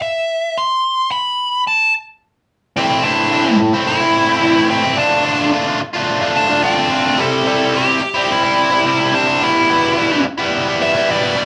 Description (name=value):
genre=rock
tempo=108 BPM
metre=4/4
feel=straight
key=A minor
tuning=A4 = 440 Hz
part: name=nasal lead guitar with a parked wah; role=melody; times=0.0-11.4 s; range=C4 to C6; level=-18 LUFS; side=equal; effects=overdrive
part: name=biting overdriven guitar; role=riff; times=2.8-11.4 s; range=A2 to F4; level=-18 LUFS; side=equal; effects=none
room=wet studio ambience, RT60 0.5 s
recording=band playing live in one room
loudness=-15 LUFS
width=mono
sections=0.0-2.8 A section; 2.8-11.4 B section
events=build-up 0.0-2.8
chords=0.0 N.C.; 2.8 Am; 5.0 Dm7; 7.2 C; 9.4 Em/B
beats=0.01 | 0.56 1.11 1.66 2.21 | 2.77 3.32 3.87 4.42 | 4.98 5.53 6.08 6.64 | 7.19 7.74 8.30 8.85 | 9.41 9.97 10.52 11.08